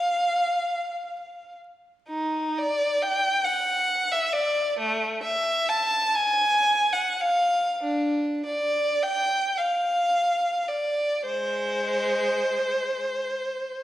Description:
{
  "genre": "classical, free, expressive piece for unaccompanied violin",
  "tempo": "27-47 BPM (dotted quarters)",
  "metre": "6/8",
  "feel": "rubato",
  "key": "unclear",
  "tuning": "A4 = 440 Hz",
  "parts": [
    { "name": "rich violin", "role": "solo", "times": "0.0-13.8 s", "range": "Ab3 to A5", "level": "-22 LUFS", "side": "equal", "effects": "none" }
  ],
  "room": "wet scoring stage reverb, RT60 1.5 s",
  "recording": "heard from further back in the room, vinyl crackle",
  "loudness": "-22 LUFS",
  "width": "side -13 dB against mid",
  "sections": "0.0-13.8 A section",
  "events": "none",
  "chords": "none"
}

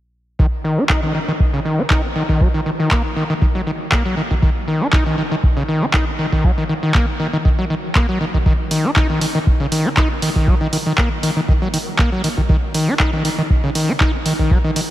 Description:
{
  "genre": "acid house",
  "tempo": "119 BPM",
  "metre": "4/4",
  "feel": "swing 54% on 16ths",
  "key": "Eb minor",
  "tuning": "A4 = 444 Hz",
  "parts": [
    { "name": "overdriven acid bass", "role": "riff", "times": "0.4-14.8 s", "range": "Db3 to Eb4", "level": "-19 LUFS", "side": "equal", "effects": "distortion, tube saturation, sidechain pumping, analog delay" },
    { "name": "electronic kick drum", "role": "drums", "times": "0.4-14.6 s", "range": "none", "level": "-17 LUFS", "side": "equal", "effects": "none" },
    { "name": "punchy analog drum machine", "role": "drums", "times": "0.9-14.9 s", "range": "handclaps, hi-hat", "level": "-23 LUFS", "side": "equal", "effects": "none" }
  ],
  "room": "moderate huge ambient reverb, RT60 4.1 s",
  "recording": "dreamy mix soaked in reverb",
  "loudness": "-15 LUFS",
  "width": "side -14 dB against mid",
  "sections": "0.4-14.9 A section",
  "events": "none",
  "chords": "none"
}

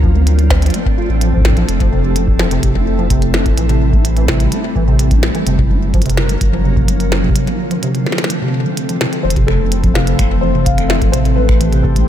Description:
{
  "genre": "IDM",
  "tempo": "127 BPM",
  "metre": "4/4",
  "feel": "straight",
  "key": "F major",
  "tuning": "A4 = 440 Hz",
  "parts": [
    { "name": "glassy FM pad", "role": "sustained chords", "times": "0.0-12.1 s", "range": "D3 to Bb4", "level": "-19 LUFS", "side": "equal", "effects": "ensemble chorus, built-in reverb" },
    { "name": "deep acid bass", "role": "arpeggios", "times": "0.0-12.1 s", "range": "C3 to F4", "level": "-20 LUFS", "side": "right 2 dB", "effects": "ensemble chorus, cassette tape, ping-pong delay" },
    { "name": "warm sub bass", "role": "bass", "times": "0.0-12.0 s", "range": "F1 to D2", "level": "-15 LUFS", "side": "equal", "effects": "tube saturation" },
    { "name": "electronic kick drum", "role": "drums", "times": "0.0-11.9 s", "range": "none", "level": "-16 LUFS", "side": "equal", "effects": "none" },
    { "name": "glitchy drum kit", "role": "drums", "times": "0.3-12.1 s", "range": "finger snaps, hi-hat, snare drum", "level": "-22 LUFS", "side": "equal", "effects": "ping-pong delay" },
    { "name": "felt-muted upright piano", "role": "melody", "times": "9.2-12.1 s", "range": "A4 to F5", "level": "-21 LUFS", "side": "left 4 dB", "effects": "wide subtle chorus, ping-pong delay" },
    { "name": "bubbling stepped-filter texture", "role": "texture", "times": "9.6-12.1 s", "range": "C4 to C5", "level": "-28 LUFS", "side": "equal", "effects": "chorus, built-in reverb, sidechain pumping" }
  ],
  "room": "light reverb, digital ambience",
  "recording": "none",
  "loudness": "-12 LUFS",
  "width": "side -10 dB against mid",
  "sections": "0.0-12.1 A section",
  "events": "break 7.4-9.2",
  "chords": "0.0 Dm7; 1.7 Fmaj7; 3.6 Am7; 5.5 Gbmaj7; 7.4 Dm7; 9.2 Fmaj7; 11.1 Am7"
}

